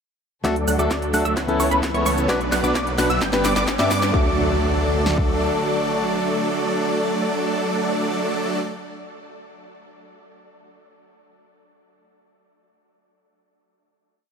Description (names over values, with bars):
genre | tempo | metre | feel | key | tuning
EDM, festival progressive house | 130 BPM | 4/4 | straight | D major | A4 = 441 Hz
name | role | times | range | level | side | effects
fingerpicked plugged-in swing-style acoustic guitar | accompaniment | 0.4-8.9 s | A3 to E5 | -26 LUFS | left 2 dB | sidechain pumping, digital delay
dark studio string section | sustained chords | 0.4-8.6 s | C#3 to A4 | -30 LUFS | left 1 dB | sidechain pumping
wide unison pluck | arpeggios | 0.4-8.9 s | B5 to G6 | -27 LUFS | right 1 dB | cassette tape, sidechain pumping, digital delay
supersaw chords | riff | 0.4-8.6 s | E3 to G5 | -23 LUFS | right 1 dB | sidechain pumping, low-pass filter, digital delay
wide detuned saw bass | bass | 0.4-5.5 s | G1 to G2 | -25 LUFS | equal | chorus, sidechain pumping
house drum kit | drums | 0.4-5.3 s | kick drum, snare drum | -23 LUFS | equal | high-pass filter on kick, high-pass filter on snare
house drum kit | drums | 0.4-4.1 s | hi-hat, shaker, snare drum | -28 LUFS | equal | none
riser and impact | sound effects | 1.9-8.9 s | none | -32 LUFS | equal | none
room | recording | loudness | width
light reverb, digital ambience | none | -18 LUFS | side -6 dB against mid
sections
0.4-4.1 build; 4.1-7.8 final chord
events
build-up 0.4-4.1; drum fill 0.4-4.1; filter sweep on supersaw synth 0.4-4.1; filter sweep on synth pluck 0.4-4.1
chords
0.4 D; 1.4 Aadd9/C#; 2.3 Bm; 3.2 G; 4.1 D